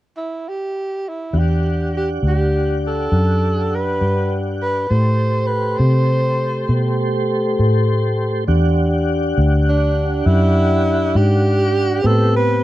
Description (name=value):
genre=slow blues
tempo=67 BPM (dotted quarters)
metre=12/8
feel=straight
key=E minor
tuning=A4 = 436 Hz
part: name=breathy tenor saxophone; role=melody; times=0.2-12.6 s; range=D4 to C5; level=-21 LUFS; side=right 2 dB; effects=none
part: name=tonewheel organ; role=sustained chords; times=1.3-12.6 s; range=A3 to F#5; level=-21 LUFS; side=equal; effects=slow rotary speaker, chorus vibrato
part: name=vintage muted fingered electric bass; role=bass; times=1.3-12.6 s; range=D2 to C3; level=-17 LUFS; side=equal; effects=none
room=small room ambience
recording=rough home demo mix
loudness=-15 LUFS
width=side -15 dB against mid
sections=0.0-1.3 A section; 1.3-8.5 B section; 8.5-12.6 C section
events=none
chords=0.0 N.C.; 1.3 Em7; 4.9 Am7; 8.5 Em9; 12.1 Am9